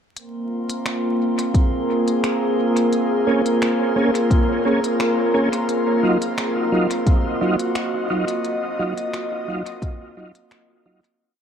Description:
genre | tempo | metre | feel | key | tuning
ambient dub | 87 BPM | 4/4 | swing 54% on 16ths | unclear | A4 = 440 Hz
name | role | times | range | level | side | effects
airy breathy pad | sustained chords | 0.2-11.2 s | Bb3 to Eb5 | -21 LUFS | left 1 dB | chorus
organic electronic drum kit | drums | 0.2-11.2 s | finger snaps, hi-hat | -31 LUFS | equal | studio reverb, dub echo
drifting glass-harmonics texture | texture | 0.4-11.2 s | C4 to C6 | -28 LUFS | right 2 dB | chorus, built-in reverb
electronic kick drum | drums | 1.5-10.0 s | none | -18 LUFS | equal | overdrive, studio reverb
tonewheel organ | stabs | 3.3-11.0 s | Gb3 to Ab4 | -23 LUFS | right 2 dB | chorus vibrato, fast rotary speaker, dub echo
room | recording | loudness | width
moderate spring reverb, RT60 2.5 s | vinyl crackle | -18 LUFS | side -8 dB against mid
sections
0.2-11.2 groove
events
fade-out 7.5-11.2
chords
0.2 Bbm7; 5.7 Ebmadd9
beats
| 0.17 0.86 1.55 2.24 | 2.93 3.62 4.31 5.00 | 5.69 6.38 7.07 7.75 | 8.45 9.13 9.82 10.51

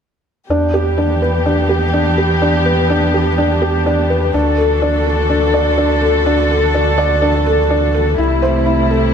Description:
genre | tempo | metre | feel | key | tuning
electronica | 125 BPM | 4/4 | straight | E minor | A4 = 440 Hz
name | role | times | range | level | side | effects
warm chamber string section | sustained chords | 0.5-9.1 s | C3 to A4 | -17 LUFS | equal | none
felt-muted upright piano | riff | 0.5-9.1 s | D4 to D5 | -16 LUFS | equal | digital delay
round analog bass | bass | 0.5-9.1 s | C2 to E2 | -18 LUFS | equal | none
room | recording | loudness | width
wet echo chamber reverb, RT60 1.2 s, studio reverb | dark, warm production | -12 LUFS | side -7 dB against mid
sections
0.5-9.1 A section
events
none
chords
0.5 Em7; 4.3 D; 8.2 C6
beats
| 0.50 0.98 1.46 1.94 | 2.42 2.90 3.38 3.86 | 4.34 4.82 5.30 5.78 | 6.26 6.74 7.22 7.70 | 8.18 8.66

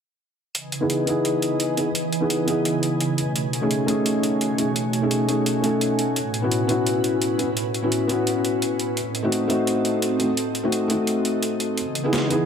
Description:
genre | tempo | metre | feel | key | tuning
liquid drum and bass | 171 BPM | 4/4 | straight | C# minor | A4 = 440 Hz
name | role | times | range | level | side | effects
glassy FM pad | sustained chords | 0.7-12.5 s | A2 to G#5 | -26 LUFS | right 2 dB | ensemble chorus, built-in reverb
breakbeat sampler-style drum kit | drums | 0.5-12.4 s | hi-hat, snare drum | -28 LUFS | right 1 dB | none
felt-muted upright piano | accompaniment | 0.8-12.5 s | A3 to A4 | -22 LUFS | left 1 dB | low-pass filter, ping-pong delay
room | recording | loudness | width
moderate lush hall reverb, RT60 2.1 s | none | -20 LUFS | side -7 dB against mid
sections
0.5-12.5 A section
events
filter sweep on felt piano 0.5-12.5; filter sweep on ambient pad 0.5-12.5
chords
0.5 C#m9; 3.2 B13; 6.2 A69; 9.0 Adim7; 11.8 C#m9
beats
| 0.55 0.90 1.25 1.60 | 1.95 2.30 2.65 3.00 | 3.36 3.71 4.06 4.41 | 4.76 5.11 5.46 5.81 | 6.16 6.51 6.87 7.22 | 7.57 7.92 8.27 8.62 | 8.97 9.32 9.67 10.02 | 10.37 10.72 11.07 11.43 | 11.78 12.13

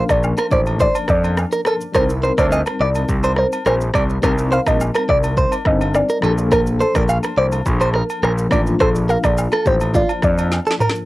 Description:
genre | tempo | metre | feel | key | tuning
afrobeats | 105 BPM | 4/4 | straight | Bb major | A4 = 440 Hz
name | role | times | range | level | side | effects
soft round pluck | melody | 0.0-10.9 s | A4 to F5 | -20 LUFS | equal | chorus, cassette tape
tine electric piano | accompaniment | 0.0-11.1 s | F3 to C5 | -25 LUFS | left 3 dB | medium tremolo
direct-recorded clean electric guitar | riff | 0.0-10.9 s | F4 to F5 | -20 LUFS | right 2 dB | tape echo
overdriven picked electric bass | bass | 0.1-10.6 s | G1 to F2 | -20 LUFS | equal | none
afro-pop drum kit | drums | 0.1-11.1 s | kick drum, rim click, shaker, snare drum, toms | -22 LUFS | equal | cassette tape
agogo bells and woodblock | percussion | 0.1-10.9 s | none | -28 LUFS | equal | none
room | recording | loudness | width
light reverb | home recording on cassette | -15 LUFS | side -17 dB against mid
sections
0.0-11.1 A section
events
drum fill 10.5-11.1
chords
0.0 Bbmaj7; 1.9 Cm7; 6.2 Bbmaj7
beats
0.23 0.80 1.37 | 1.95 2.52 3.09 3.66 | 4.23 4.80 5.37 5.95 | 6.52 7.09 7.66 8.23 | 8.80 9.37 9.95 10.52

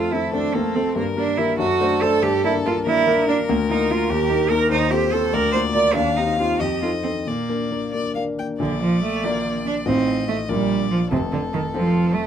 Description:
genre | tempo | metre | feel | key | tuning
quick classical-period movement for piano trio | 96 BPM (dotted quarters) | 6/8 | rubato | Bb major from 3.5 s | A4 = 440 Hz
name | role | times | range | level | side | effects
rich violin | melody | 0.0-12.3 s | A4 to G5 | -27 LUFS | left 5 dB | none
rich cello | second line | 0.0-12.3 s | C3 to D5 | -21 LUFS | right 5 dB | none
warm concert grand piano | accompaniment | 0.0-12.3 s | F1 to D5 | -23 LUFS | left 3 dB | none
room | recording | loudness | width
moderate studio ambience, RT60 0.5 s | none | -18 LUFS | side -9 dB against mid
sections
0.0-8.6 A section; 8.6-12.3 B section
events
none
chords
0.0 F; 1.0 Gm; 1.6 D7/F#; 2.2 Gm; 3.5 Bb/D; 4.1 Eb; 4.7 F7/Eb; 5.3 Bb/D; 6.0 Cm/Eb; 6.6 F7; 7.3 Bb; 9.9 F7/A; 10.5 Bb; 11.1 F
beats
0.33 | 0.96 1.59 | 2.23 2.86 | 3.48 4.09 | 4.70 5.33 | 5.95 6.59 | 7.26 7.93 | 8.60 9.23 | 9.86 10.49 | 11.12 11.74

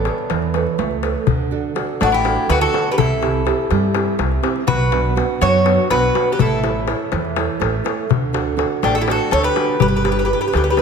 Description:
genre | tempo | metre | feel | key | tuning
greek folk, Greek bouzouki band | 246 BPM (eighths) | 7/8 | straight | D major | A4 = 440 Hz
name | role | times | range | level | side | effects
Greek bouzouki | melody | 0.0-10.8 s | D4 to C#5 | -20 LUFS | left 1 dB | none
mandolin | second line | 0.0-10.8 s | B3 to A4 | -24 LUFS | left 4 dB | none
nylon-string guitar | accompaniment | 0.0-10.8 s | B2 to C#5 | -21 LUFS | right 6 dB | none
upright bass | bass | 0.0-10.8 s | G1 to G2 | -22 LUFS | right 1 dB | none
darbuka | percussion | 0.1-10.8 s | none | -22 LUFS | left 7 dB | none
room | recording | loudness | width
moderate concert hall reverb, RT60 2.2 s | none | -15 LUFS | side -6 dB against mid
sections
0.0-1.3 A section; 1.3-10.8 B section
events
none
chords
0.0 Aadd9; 1.3 D; 3.0 C; 4.7 Bm; 6.4 A; 8.1 D; 9.8 G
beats
0.05 0.30 0.54 0.79 1.03 | 1.27 1.52 1.76 2.00 2.25 2.49 2.73 | 2.98 3.22 3.46 3.71 3.95 4.20 4.44 | 4.68 4.93 5.17 5.42 5.66 5.90 6.15 | 6.39 6.63 6.88 7.12 7.37 7.61 7.85 | 8.10 8.34 8.59 8.83 9.07 9.32 9.56 | 9.80 10.05 10.29 10.54 10.78

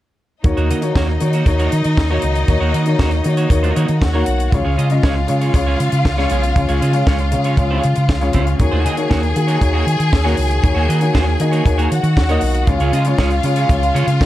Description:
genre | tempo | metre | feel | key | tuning
disco | 118 BPM | 4/4 | straight | Eb minor | A4 = 440 Hz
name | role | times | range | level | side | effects
clear studio string section | second line | 0.4-14.3 s | Eb4 to Ab5 | -22 LUFS | left 1 dB | none
clean electric guitar | accompaniment | 0.4-14.2 s | Bb3 to Eb5 | -25 LUFS | right 5 dB | none
clear concert grand piano | accompaniment | 0.4-14.3 s | Db3 to Eb5 | -21 LUFS | left 3 dB | none
fingered electric bass | bass | 0.4-14.3 s | Cb2 to Eb3 | -17 LUFS | equal | none
tight funk drum kit | drums | 0.4-14.3 s | hi-hat, kick drum, snare drum | -18 LUFS | equal | none
room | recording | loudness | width
studio ambience | dark, warm production | -14 LUFS | side -14 dB against mid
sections
0.4-14.3 A section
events
none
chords
0.4 Ebm7; 4.5 Db; 8.6 Ebm7; 12.7 Db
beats
| 0.44 0.95 1.46 1.97 | 2.48 2.99 3.50 4.01 | 4.52 5.03 5.54 6.05 | 6.56 7.07 7.58 8.09 | 8.60 9.11 9.62 10.13 | 10.64 11.15 11.66 12.17 | 12.68 13.19 13.70 14.21

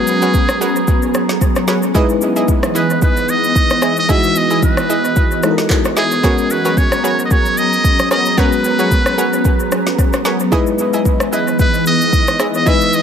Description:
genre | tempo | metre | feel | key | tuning
amapiano | 112 BPM | 4/4 | swing 55% on 16ths | G# minor | A4 = 440 Hz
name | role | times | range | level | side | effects
trumpet with metal mute | melody | 0.0-13.0 s | G#4 to E5 | -18 LUFS | right 1 dB | dub echo
FM electric piano with auto-pan | accompaniment | 0.0-13.0 s | G#3 to B4 | -20 LUFS | left 3 dB | dub echo
ethereal airy pad | sustained chords | 0.0-13.0 s | E3 to A#5 | -19 LUFS | right 1 dB | ensemble chorus, built-in reverb, sidechain pumping
deep house drum kit | drums | 0.1-13.0 s | handclaps, kick drum, rim click, shaker, snare drum | -17 LUFS | equal | dub echo
analog pluck | stabs | 0.2-12.8 s | E4 to D#5 | -23 LUFS | right 2 dB | chorus, dub echo
room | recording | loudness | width
light reverb, digital ambience | echo-heavy mix | -12 LUFS | side -8 dB against mid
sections
0.0-13.0 A section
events
none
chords
0.0 G#m11; 1.9 Emaj7; 6.2 G#m11; 10.5 Emaj7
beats
0.34 0.88 1.41 | 1.95 2.48 3.02 3.56 | 4.09 4.63 5.16 5.70 | 6.24 6.77 7.31 7.84 | 8.38 8.91 9.45 9.98 | 10.52 11.06 11.59 12.13 | 12.66

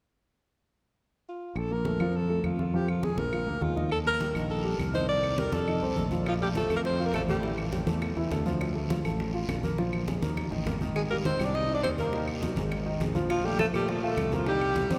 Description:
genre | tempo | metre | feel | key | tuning
Afro-Cuban jazz | 204 BPM | 4/4 | straight | Bb major | A4 = 440 Hz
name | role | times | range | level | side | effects
breathy alto saxophone | melody | 1.3-7.6, 11.0-15.0 s | F4 to Eb5 | -33 LUFS | equal | none
modern bright fingered electric bass | bass | 1.6-15.0 s | Ab1 to Bb2 | -34 LUFS | equal | none
claves | percussion | 1.6-14.8 s | none | -47 LUFS | equal | none
congas | percussion | 1.6-15.0 s | none | -38 LUFS | equal | none
dark baby grand piano | accompaniment | 1.7-15.0 s | Eb3 to F5 | -35 LUFS | equal | none
guiro | percussion | 3.9-15.0 s | none | -48 LUFS | equal | none
bright tenor saxophone | second line | 6.3-7.6, 11.0-15.0 s | F3 to Eb4 | -39 LUFS | equal | none
bongos | percussion | 6.3-15.0 s | none | -44 LUFS | equal | none
room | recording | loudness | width
wet cathedral reverb, RT60 6.2 s | recorded in a church or concert hall | -29 LUFS | mono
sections
0.4-1.6 A section; 1.6-6.3 B section; 6.3-15.0 C section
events
none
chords
0.4 N.C.; 1.6 Bb5; 2.7 Fm; 3.3 Bb7; 3.9 Eb; 5.1 Cmadd9; 5.7 F7; 6.3 Bb5; 7.4 A5; 8.6 Dm; 9.8 Bb5; 10.4 Eb5; 11.0 Abmaj7; 12.1 Ebm; 12.7 Absus2; 13.3 Bb5; 14.5 Cm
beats
| 0.39 0.68 0.98 1.27 | 1.56 1.86 2.15 2.44 | 2.74 3.03 3.33 3.62 | 3.91 4.21 4.50 4.79 | 5.09 5.38 5.67 5.97 | 6.26 6.56 6.85 7.14 | 7.44 7.73 8.02 8.32 | 8.61 8.90 9.20 9.49 | 9.78 10.07 10.37 10.66 | 10.96 11.25 11.54 11.83 | 12.13 12.42 12.71 13.01 | 13.30 13.59 13.88 14.18 | 14.47 14.76

